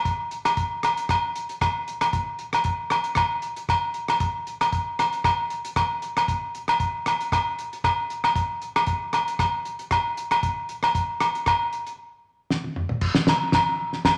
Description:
highlife; 116 BPM; 4/4; swing 54% on 16ths
cloth-damped thuddy drum kit; drums; 0.1-14.2 s; crash cymbal, hi-hat, kick drum, rim click, snare drum, toms; -29 LUFS; equal
agogo bells; percussion; 0.5-14.2 s; -26 LUFS; equal
wet large studio reverb, RT60 1.2 s; -25 LUFS; mono
0.0-13.0 A section; 13.0-14.2 B section
break 12.0-13.0; drum fill 12.5-13.0

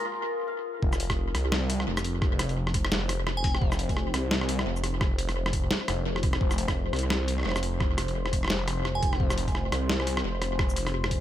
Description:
half-time drum and bass; 172 BPM; 4/4; swing 58% on 16ths, half-time; F minor; A4 = 440 Hz
dark analog pad; sustained chords; 0.0-11.2 s; Ab3 to F5; -37 LUFS; left 2 dB; chorus, vintage 12-bit sampler grit, sidechain pumping
santur; arpeggios; 0.0-3.1 s; F4 to F5; -34 LUFS; left 3 dB; tape echo
phased detuned saw bass; bass; 0.8-11.2 s; F1 to C2; -29 LUFS; equal; phaser
electronic kick drum; drums; 0.8-11.2 s; -28 LUFS; equal; studio ambience
boom bap sampler-style drum kit; drums; 0.9-11.2 s; hi-hat, rim click, shaker, snare drum; -30 LUFS; equal; studio ambience, tape echo
glassy synth bell; melody; 3.4-3.6, 9.0-9.2 s; Ab5; -37 LUFS; right 1 dB; chorus, phaser, dub echo
little or no reverb; echo-heavy mix, high-pass filter; -25 LUFS; side -12 dB against mid
0.8-11.2 A section
break 0.1-0.8; drop 0.8-11.2
0.0 Fm

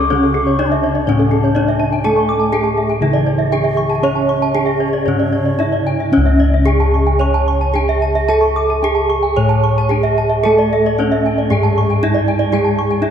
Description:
Balinese gamelan; 111-124 BPM; 4/4; straight; C# pelog; A4 = 439 Hz
gamelan-type bronze metallophone; melody; 0.0-13.1 s; C#4 to C#5; -18 LUFS; right 1 dB
bansuri; second line; 0.0-6.0 s; C#5 to D6+20c; -25 LUFS; left 4 dB
gamelan-type bronze metallophone; accompaniment; 0.0-6.1, 10.5-13.1 s; C#3 to C#4; -23 LUFS; right 3 dB
gamelan-type bronze metallophone; arpeggios; 0.0-13.1 s; G#4-30c to D6+20c; -22 LUFS; left 3 dB; tape echo
gamelan-type bossed gongs; bass; 0.0-13.1 s; C#2 to C#5; -17 LUFS; left 1 dB
gamelan-type bronze metallophone; arpeggios; 0.2-12.8 s; A4-20c to C#6; -21 LUFS; right 5 dB; tape echo
wet cathedral reverb, RT60 4.8 s; in a vast, echoing space; -13 LUFS; side -8 dB against mid
0.0-6.1 A section; 6.1-13.1 B section

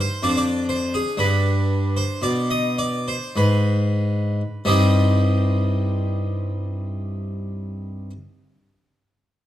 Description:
classical, baroque-style suite movement for harpsichord; 44-64 BPM; 3/4; rubato; C minor; A4 = 440 Hz
harpsichord; solo; 0.0-8.1 s; C2 to Eb5; -19 LUFS; equal
moderate recital hall reverb, RT60 1.3 s; dark, warm production; -19 LUFS; side -12 dB against mid
0.0-4.7 A section; 4.7-8.6 B section
slowing down 0.0-4.7
0.2 Fm6; 1.2 G; 4.7 Cm

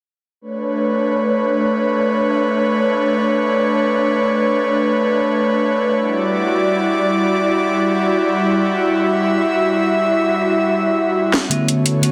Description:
liquid drum and bass; free time; B minor; A4 = 438 Hz
airy breathy pad; sustained chords; 0.4-12.1 s; D3 to E5; -17 LUFS; equal; chorus
drum and bass drum kit; drums; 11.3-12.1 s; hi-hat, snare drum; -21 LUFS; equal
bell-like tine electric piano; accompaniment; 11.5-12.1 s; D3 to F#4; -19 LUFS; equal; subtle chorus
wet recital hall reverb, RT60 1.3 s; dense, heavily limited modern master; -17 LUFS; mono
0.4-12.1 A section
drum fill 11.3
0.4 Bm9; 6.0 Em9; 11.5 Bm9

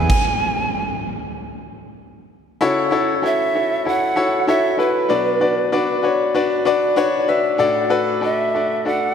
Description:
pop; 96 BPM; 4/4; straight; A4 = 440 Hz
polished pan flute; melody; 0.0-9.1 s; B4 to G#5; -21 LUFS; right 4 dB; slapback echo
bright grand piano; accompaniment; 0.0-9.1 s; A2 to E5; -17 LUFS; left 3 dB; slapback echo
wet lush hall reverb, RT60 2.6 s; big arena sound; -16 LUFS; side -7 dB against mid
0.0-2.6 A section; 2.6-9.1 A section
stop 0.1-2.6
0.0 E; 1.4 N.C.; 2.6 F#m7; 5.1 Bm; 7.6 D

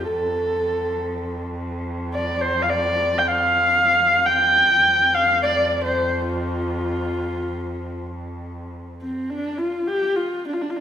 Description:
mongolian traditional; 104 BPM; 4/4; straight; F gong mode; A4 = 439 Hz
dark horsehead fiddle; melody; 0.0-10.8 s; C4 to G5; -19 LUFS; equal
clear cello; drone; 0.0-9.4 s; F2; -29 LUFS; equal
wet recital hall reverb, RT60 1.4 s; minimal, uncompressed stereo recording; -18 LUFS; side -9 dB against mid
0.0-9.3 A section; 9.3-10.8 B section

